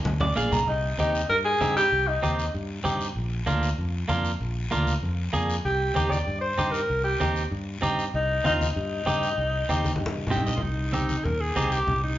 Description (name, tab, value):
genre	latin, cumbia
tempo	193 BPM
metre	4/4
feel	straight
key	C minor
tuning	A4 = 440 Hz
part	fingered electric bass	bass	0.1-12.2 s	Bb1 to G2	-28 LUFS	equal	none
part	congas	percussion	0.1-12.0 s	none	-31 LUFS	left 1 dB	none
part	guiro	percussion	0.1-12.2 s	none	-39 LUFS	left 4 dB	none
part	clean electric guitar	accompaniment	0.2-11.8 s	Bb3 to Bb5	-28 LUFS	right 2 dB	none
part	warm tenor saxophone	second line	0.7-2.5, 5.7-10.3 s	Eb4 to D5	-25 LUFS	left 1 dB	none
part	growling alto saxophone	melody	10.6-12.2 s	Eb4 to Bb4	-28 LUFS	equal	none
room	wet large studio reverb, RT60 0.8 s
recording	band playing live in one room, nothing above 7.4 kHz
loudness	-23 LUFS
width	side -13 dB against mid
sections	0.7-10.6 A section; 10.6-12.2 B section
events	drum fill 0.0-0.7, 9.8-10.6; clean electric guitar fill 0.1-0.7, 10.2-10.6; tenor saxophone solo 0.7-10.6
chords	0.0 Bb; 0.7 Cm; 3.2 Bb; 5.6 Cm